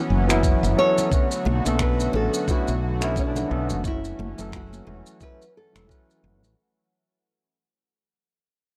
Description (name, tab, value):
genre	sunset chillout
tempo	88 BPM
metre	4/4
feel	swing 58% on 16ths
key	unclear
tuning	A4 = 435 Hz
part	nylon-string guitar	melody	0.0-6.2 s	D4 to C#5	-29 LUFS	equal	tape echo
part	lush unison pad	sustained chords	0.0-6.5 s	D3 to F#5	-34 LUFS	equal	chorus
part	woody fretless electric bass	bass	0.1-6.5 s	E1 to B1	-28 LUFS	equal	none
part	barky tine electric piano	accompaniment	0.3-6.5 s	D3 to B4	-29 LUFS	equal	tape echo
part	shaker and finger snaps	drums	0.3-6.6 s	none	-33 LUFS	equal	none
part	electronic kick drum	drums	0.4-6.1 s	none	-26 LUFS	equal	none
part	congas and bongos	percussion	1.0-6.5 s	none	-35 LUFS	equal	none
room	studio reverb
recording	dry, gritty hardware recording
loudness	-22 LUFS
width	mono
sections	0.0-6.6 A section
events	fade-out 0.0-6.6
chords	0.0 F#7sus4; 1.1 Bm7; 3.9 F#m7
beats	0.44 | 1.12 1.80 2.49 3.17 | 3.85 4.53 5.21 5.89